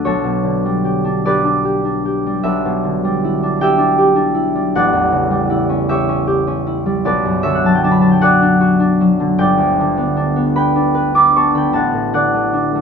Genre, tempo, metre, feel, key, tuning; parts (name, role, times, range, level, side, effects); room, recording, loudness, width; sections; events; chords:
classical, solo harp piece; 52 BPM (dotted quarters); 6/8; rubato; A4 = 440 Hz
concert harp; solo; 0.0-12.8 s; G1 to D6; -13 LUFS; equal
light reverb; minimal, uncompressed stereo recording; -13 LUFS; side -6 dB against mid
0.0-12.8 A section
0.0 G/B; 2.4 Em7/B; 4.7 A7; 7.0 Bm; 9.4 G; 11.7 D/A